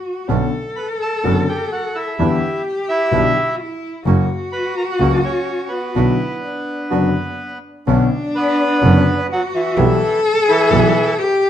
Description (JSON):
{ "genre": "tango", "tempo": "127 BPM", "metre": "4/4", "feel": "rubato", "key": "B minor", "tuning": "A4 = 439 Hz", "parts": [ { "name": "warm cello", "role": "second line", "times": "0.0-11.5 s", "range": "D4 to A4", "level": "-20 LUFS", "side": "left 2 dB", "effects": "none" }, { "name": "warm concert grand piano", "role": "accompaniment", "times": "0.3-10.9 s", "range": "F#1 to G4", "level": "-18 LUFS", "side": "left 3 dB", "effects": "none" }, { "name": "bandoneon", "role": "stabs", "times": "0.3-10.9 s", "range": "G3 to F#4", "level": "-27 LUFS", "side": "right 9 dB", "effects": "none" }, { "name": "clear double bass", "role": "bass", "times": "0.3-10.9 s", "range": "F#1 to E2", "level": "-18 LUFS", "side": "right 3 dB", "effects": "none" }, { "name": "bandoneon", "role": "melody", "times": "0.8-11.1 s", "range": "E3 to B5", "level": "-21 LUFS", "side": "right 2 dB", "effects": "plate reverb" } ], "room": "moderate large studio reverb, RT60 0.9 s", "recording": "dark, warm production", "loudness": "-15 LUFS", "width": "side -10 dB against mid", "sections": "0.0-7.9 A section; 7.9-11.5 B section", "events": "none", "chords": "0.3 Bmadd9; 2.2 Em7; 4.1 F#; 5.9 Bm; 7.9 Bmadd9; 9.8 Em/B", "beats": "| 0.28 0.76 1.24 1.71 | 2.19 2.66 3.13 3.59 | 4.06 4.53 5.00 5.48 | 5.95 6.42 6.90 7.39 | 7.87 8.35 8.83 9.30 | 9.77 10.24 10.71 11.18" }